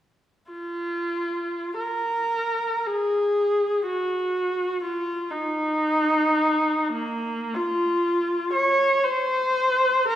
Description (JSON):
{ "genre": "classical, free, expressive piece for unaccompanied viola", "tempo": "41-64 BPM", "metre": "3/4", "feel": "rubato", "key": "Bb minor", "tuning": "A4 = 435 Hz", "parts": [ { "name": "warm viola", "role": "solo", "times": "0.5-10.2 s", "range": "Bb3 to Db5", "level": "-22 LUFS", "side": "equal", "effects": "none" } ], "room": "wet recital hall reverb, RT60 1.7 s", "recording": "recorded in a church or concert hall", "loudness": "-22 LUFS", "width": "side -11 dB against mid", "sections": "0.5-10.2 A section", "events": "none", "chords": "none" }